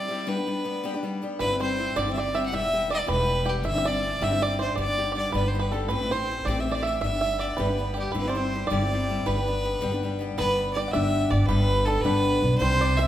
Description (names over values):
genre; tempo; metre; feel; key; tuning
celtic folk, Celtic jig; 107 BPM (dotted quarters); 6/8; straight; G major; A4 = 441 Hz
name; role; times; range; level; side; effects
bright fiddle; melody; 0.0-13.1 s; G4 to F#5; -27 LUFS; equal; none
picked steel-string acoustic guitar; accompaniment; 0.0-13.1 s; G2 to G4; -29 LUFS; left 3 dB; none
bluegrass banjo; second line; 1.4-13.1 s; G4 to F#5; -31 LUFS; right 4 dB; none
upright bass; bass; 1.4-13.1 s; E1 to C2; -28 LUFS; equal; none
room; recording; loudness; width
wet recital hall reverb, RT60 1.4 s; recorded in a church or concert hall; -23 LUFS; side -12 dB against mid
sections
0.0-1.4 A section; 1.4-10.4 A section; 10.4-13.1 B section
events
none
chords
0.3 G; 1.4 Cadd9/G; 2.5 Em; 3.7 Cadd9/G; 4.8 G; 5.9 Am7; 7.0 G; 8.1 Cadd9/G; 9.3 G